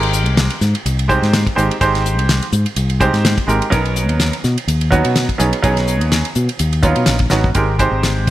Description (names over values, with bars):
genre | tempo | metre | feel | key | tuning
electric jazz fusion | 125 BPM | 4/4 | swing 54% on 16ths | Ab major | A4 = 440 Hz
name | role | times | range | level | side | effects
bright baby grand piano | accompaniment | 0.0-8.3 s | F#3 to C5 | -18 LUFS | right 2 dB | none
fingered electric bass | bass | 0.0-8.3 s | Ab1 to B2 | -16 LUFS | left 1 dB | none
damped 70s drum kit | drums | 0.0-8.3 s | hi-hat, kick drum, ride cymbal, snare drum | -19 LUFS | left 1 dB | none
room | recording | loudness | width
light reverb, small room ambience | bright 1980s-style digital production | -13 LUFS | side -14 dB against mid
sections
0.0-7.6 A section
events
drum fill 7.3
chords
0.0 Abmaj9; 3.7 Bmaj9; 7.6 Abmaj9